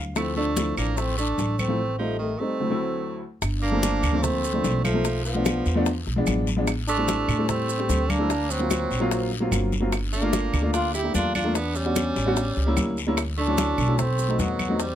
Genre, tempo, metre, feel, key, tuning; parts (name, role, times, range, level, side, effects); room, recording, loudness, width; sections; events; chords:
Afro-Cuban jazz; 148 BPM; 4/4; straight; D minor; A4 = 440 Hz
warm upright piano; accompaniment; 0.0-14.8 s; D2 to F5; -27 LUFS; left 1 dB
upright bass; bass; 0.0-14.9 s; G1 to A2; -27 LUFS; equal
breathy trombone; melody; 0.2-14.9 s; A3 to G4; -28 LUFS; equal
edgy tenor saxophone; second line; 0.2-14.9 s; Eb3 to E4; -31 LUFS; right 4 dB
bongos; percussion; 0.2-14.9 s; -32 LUFS; left 9 dB
claves; percussion; 0.2-14.8 s; -34 LUFS; right 4 dB
congas; percussion; 0.2-14.9 s; -32 LUFS; left 1 dB
guiro; percussion; 0.2-14.9 s; -38 LUFS; left 7 dB
maracas; percussion; 0.2-14.9 s; -36 LUFS; right 8 dB
light reverb; -22 LUFS; side -11 dB against mid
0.0-3.4 A section; 3.4-14.9 B section
upright piano fill 0.0; break 1.8-3.4; drum fill 9.7
0.2 Dm7; 1.8 Am7b5; 2.6 D7; 3.4 Gm11; 5.0 Bm7b5; 5.9 E7b9; 6.7 Am7; 8.3 D7alt; 9.9 Gm7; 11.6 Em7; 12.4 A7b9; 13.2 Dmaj9; 14.0 B7b9